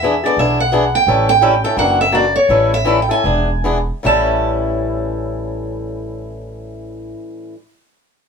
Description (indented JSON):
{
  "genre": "acoustic string swing (jazz manouche)",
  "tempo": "146-172 BPM",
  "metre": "4/4",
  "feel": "swing 61% on 8ths",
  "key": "A mixolydian",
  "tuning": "A4 = 442 Hz",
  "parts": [
    { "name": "picked steel-string acoustic guitar", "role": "melody", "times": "0.0-7.1 s", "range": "C#5 to A5", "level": "-15 LUFS", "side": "right 2 dB", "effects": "none" },
    { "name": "picked swing-style acoustic guitar", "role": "accompaniment", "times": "0.0-7.6 s", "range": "A2 to A4", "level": "-18 LUFS", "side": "left 2 dB", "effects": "none" },
    { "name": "upright bass", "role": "bass", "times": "0.0-7.1 s", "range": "E1 to E2", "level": "-22 LUFS", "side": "right 1 dB", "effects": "none" }
  ],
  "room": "wet studio ambience, RT60 0.5 s",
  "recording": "band playing live in one room",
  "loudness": "-13 LUFS",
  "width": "side -5 dB against mid",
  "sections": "0.0-4.0 A section; 4.0-7.3 B section",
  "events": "slowing down 1.1-4.0",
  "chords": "0.0 E7; 1.1 A7; 1.8 F#aug7; 2.5 A7; 3.2 E7; 4.0 A7"
}